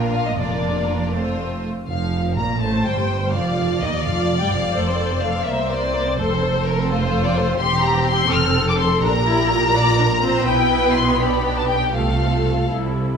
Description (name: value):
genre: quick classical-period movement for string orchestra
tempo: 79-86 BPM (dotted quarters)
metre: 6/8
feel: straight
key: F major from 7.6 s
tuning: A4 = 442 Hz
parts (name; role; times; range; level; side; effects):
- bright studio violin section; second line; 0.0-13.1 s; F4 to D5; -25 LUFS; left 2 dB; none
- rich studio viola section; accompaniment; 0.0-13.2 s; Eb3 to C5; -24 LUFS; equal; none
- rich studio double bass section; bass; 0.0-13.2 s; E1 to Eb2; -24 LUFS; right 3 dB; none
- warm studio cello section; bass; 0.0-13.2 s; C2 to C3; -25 LUFS; right 2 dB; none
- rich studio violin section; melody; 0.1-12.7 s; Bb4 to F6; -22 LUFS; left 3 dB; none
room: wet scoring stage reverb, RT60 1.6 s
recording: minimal, uncompressed stereo recording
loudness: -17 LUFS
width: side -6 dB against mid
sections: 0.0-1.9 A section; 1.9-13.2 B section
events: none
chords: 0.4 Bb/F; 1.1 F; 1.9 Bb5/F; 2.6 Gsus24; 3.3 Ebmaj9/F; 4.8 F; 5.5 C9; 6.2 F; 7.6 C/E; 8.3 F; 9.0 Bb5; 10.5 G/B; 12.0 F/C